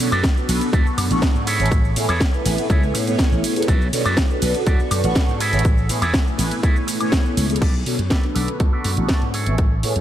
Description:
filtered disco house; 122 BPM; 4/4; straight; B dorian; A4 = 440 Hz
mellow synth brass; accompaniment; 0.0-9.9 s; A3 to C#6; -24 LUFS; right 1 dB; chorus, phaser, sidechain pumping, low-pass filter
slap bass; bass; 0.0-10.0 s; A1 to B2; -22 LUFS; equal; sidechain pumping, low-pass filter
house drum kit; drums; 0.0-10.0 s; crash cymbal, hi-hat, ride cymbal, shaker, snare drum, woodblock; -25 LUFS; equal; overdrive, sidechain pumping on hats, sidechain pumping on perc, sidechain pumping on cymbals
electric guitar with an envelope filter; riff; 0.1-9.9 s; E4 to D5; -28 LUFS; right 2 dB; sidechain pumping, low-pass filter
electronic kick drum; drums; 0.2-9.7 s; -18 LUFS; equal; overdrive
light reverb; -16 LUFS; side -11 dB against mid
0.0-7.6 A section; 7.6-10.0 B section
drop 0.0-7.6; filter sweep 7.6-10.0
0.0 Bm7; 1.5 Amaj7; 3.7 Bm7; 5.4 Amaj7; 7.6 Bm7; 9.3 Amaj7
0.24 0.73 1.23 | 1.72 2.21 2.70 3.19 | 3.68 4.18 4.67 5.16 | 5.65 6.14 6.63 7.13 | 7.62 8.11 8.60 9.09 | 9.59

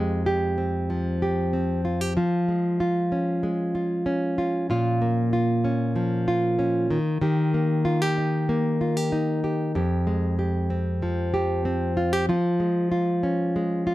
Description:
pop; 95 BPM; 4/4; straight; F minor; A4 = 440 Hz
nylon-string guitar; solo; 0.0-13.9 s; F2 to G4; -22 LUFS; equal
light reverb; dark, warm production; -22 LUFS; side -16 dB against mid
0.0-13.9 A section
0.0 Fmadd9; 2.2 Db/F; 4.7 Bbm; 6.9 Eb; 9.8 Fmadd9; 12.3 Db/F
0.27 0.90 1.54 | 2.17 2.80 3.44 4.07 | 4.70 5.33 5.97 6.60 | 7.23 7.86 8.50 9.13 | 9.76 10.39 11.02 11.65 | 12.29 12.92 13.55

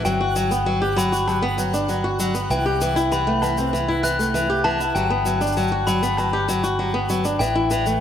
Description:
folktronica; 98 BPM; 4/4; straight; G major; A4 = 442 Hz
glockenspiel with hard plastic mallets; second line; 0.0-7.7 s; G5 to F#6; -24 LUFS; left 3 dB; analog delay
flamenco guitar; arpeggios; 0.0-8.0 s; E3 to G4; -22 LUFS; equal; vintage 12-bit sampler grit, analog delay
fingered electric bass with an envelope filter; bass; 0.0-8.0 s; G1 to C2; -26 LUFS; right 1 dB
twinkling granular texture; texture; 0.0-8.0 s; F#5; -33 LUFS; equal; built-in reverb
shaker and woodblock; drums; 0.1-8.0 s; -33 LUFS; left 1 dB
wet plate reverb, RT60 2.5 s; dreamy mix soaked in reverb; -19 LUFS; side -9 dB against mid
0.0-8.0 A section
0.1 Gmaj7; 2.5 C; 5.0 Gmaj7; 7.4 A7(no3)
| 0.06 0.67 1.28 1.89 | 2.50 3.12 3.73 4.34 | 4.95 5.57 6.18 6.79 | 7.40

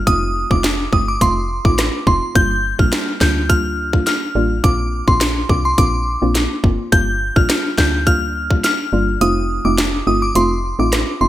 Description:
dancehall; 105 BPM; 4/4; straight; G minor; A4 = 441 Hz
woody FM bass; bass; 0.0-11.3 s; F1 to D2; -20 LUFS; equal
glassy synth bell; melody; 0.1-11.3 s; C6 to G6; -20 LUFS; equal; chorus, digital delay
soft round pluck; accompaniment; 0.1-11.3 s; G3 to F4; -22 LUFS; right 1 dB; chorus, sidechain pumping
island pop drum kit; drums; 0.1-11.1 s; hi-hat, kick drum, rim click, snare drum; -17 LUFS; equal; gated reverb
light reverb; bright 1980s-style digital production; -14 LUFS; side -14 dB against mid
0.0-11.3 A section
kick muted 9.2-11.3
0.1 F7; 2.4 Gm7; 4.6 Bbadd9; 6.9 Gm7; 9.2 F7
| 0.07 0.64 1.21 1.78 | 2.35 2.93 3.50 4.07 | 4.64 5.21 5.78 6.35 | 6.93 7.50 8.07 8.64 | 9.21 9.78 10.35 10.93

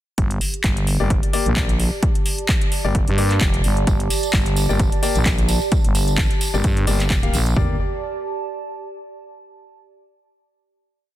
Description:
bass house; 130 BPM; 4/4; swing 55% on 16ths; G minor; A4 = 440 Hz
growling FM bass; bass; 0.2-7.8 s; F1 to G2; -20 LUFS; equal; tube saturation, sidechain pumping
house drum kit; drums; 0.2-7.7 s; kick drum, toms; -20 LUFS; equal; overdrive
house drum kit; drums; 0.2-7.5 s; handclaps, hi-hat; -25 LUFS; equal; overdrive
warbly tape-like pad; texture; 0.5-9.4 s; G4 to A5; -29 LUFS; right 5 dB; chorus, built-in reverb, sidechain pumping
warm baby grand piano; stabs; 1.0-7.7 s; Bb3 to F5; -27 LUFS; left 7 dB; sidechain pumping, ping-pong delay
tambourine; percussion; 3.9-7.5 s; -31 LUFS; right 5 dB
little or no reverb; dense, heavily limited modern master; -17 LUFS; side -13 dB against mid
0.2-7.6 drop; 7.6-9.4 final chord
drop 0.2-7.6
0.2 Gm; 7.6 G5
| 0.18 0.64 1.10 1.56 | 2.03 2.49 2.95 3.41 | 3.87 4.33 4.80 5.26 | 5.72 6.18 6.64 7.10 | 7.57 8.03 8.49 8.95

